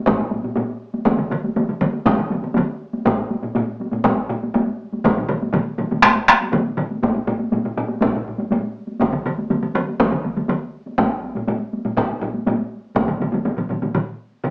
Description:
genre	japanese traditional, taiko drum ensemble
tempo	121 BPM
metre	4/4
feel	straight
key	none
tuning	none
part	taiko ensemble	percussion	0.1-13.9 s	none	-22 LUFS	equal	none
part	taiko ensemble	percussion	0.1-14.5 s	none	-24 LUFS	equal	none
part	taiko ensemble	percussion	0.1-13.1 s	none	-20 LUFS	equal	none
part	taiko ensemble	percussion	1.1-14.5 s	none	-21 LUFS	equal	none
room	wet studio ambience, RT60 0.5 s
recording	band playing live in one room, small speaker sound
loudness	-18 LUFS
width	side -29 dB against mid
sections	0.0-14.5 A section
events	none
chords	none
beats	0.06 0.56 | 1.06 1.56 2.06 2.56 | 3.06 3.55 4.05 4.55 | 5.04 5.54 6.04 6.54 | 7.03 7.53 8.02 8.52 | 9.01 9.51 10.00 10.50 | 10.99 11.48 11.98 12.47 | 12.96 13.45 13.95 14.44

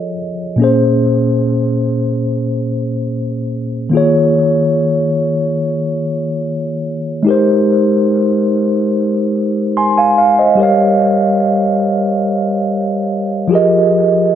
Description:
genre	R&B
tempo	72 BPM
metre	4/4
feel	straight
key	unclear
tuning	A4 = 444 Hz
part	mellow tine electric piano	solo	0.0-14.3 s	Bb2 to C6	-12 LUFS	equal	medium stereo tremolo, analog delay
room	wet spring reverb, RT60 1.6 s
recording	echo-heavy mix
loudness	-12 LUFS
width	side -10 dB against mid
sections	0.0-7.3 A section; 7.3-14.3 B section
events	none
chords	0.0 F7alt; 0.6 Bbm9; 3.9 Eb9sus4; 7.3 Abmaj9; 10.6 Gm7b5; 13.5 Fm11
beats	| 0.60 1.43 2.27 3.10 | 3.93 4.77 5.60 6.43 | 7.27 8.10 8.93 9.77 | 10.60 11.43 12.27 13.10 | 13.93

